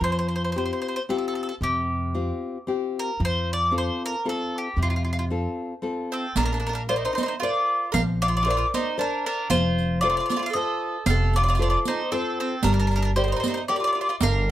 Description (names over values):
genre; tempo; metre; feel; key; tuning
italian folk, Italian serenade; 114 BPM; 3/4; swing 54% on 8ths; F major, Bb major from 6.4 s; A4 = 436 Hz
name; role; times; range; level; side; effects
bowl-back mandolin; melody; 0.0-14.5 s; F4 to F5; -26 LUFS; equal; plate reverb
nylon-string guitar; accompaniment; 0.0-14.5 s; C3 to D5; -28 LUFS; left 3 dB; none
upright bass; bass; 0.0-14.5 s; F1 to F2; -26 LUFS; right 1 dB; none
mandolin; second line; 6.1-14.5 s; C4 to Bb4; -30 LUFS; right 5 dB; none
riq; percussion; 6.4-14.5 s; none; -29 LUFS; right 5 dB; none
room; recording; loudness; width
moderate studio reverb, RT60 0.5 s; none; -22 LUFS; side -13 dB against mid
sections
0.0-6.4 A section; 6.4-14.5 B section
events
none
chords
0.0 Fsus2; 3.2 F; 6.4 Bbadd9; 9.5 F; 12.6 Gm